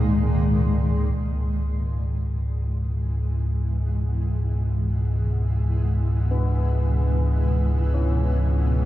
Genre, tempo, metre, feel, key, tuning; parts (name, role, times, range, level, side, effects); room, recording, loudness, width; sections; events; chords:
dark ambient drone; free time; C# dorian; A4 = 442 Hz
granular cloud pad; sustained chords; 0.0-8.9 s; C#2 to G#3; -28 LUFS; equal; built-in reverb
deep rumbling drone; drone; 0.0-8.9 s; C#2 to G#2; -21 LUFS; equal; built-in reverb
carillon bells; arpeggios; 6.3-8.9 s; B3 to C#4; -31 LUFS; left 4 dB; tape echo, shimmer reverb
wet cathedral reverb, RT60 6.1 s; dark, warm production, nothing above 7.6 kHz; -21 LUFS; side -15 dB against mid
0.0-1.1 A section; 1.1-8.9 B section
fade-in on ambient pad 1.1-8.9; fade-in on church bells 1.1-8.9; filter sweep on synth drone 1.1-8.9
0.0 G#sus24/C#; 1.1 C#m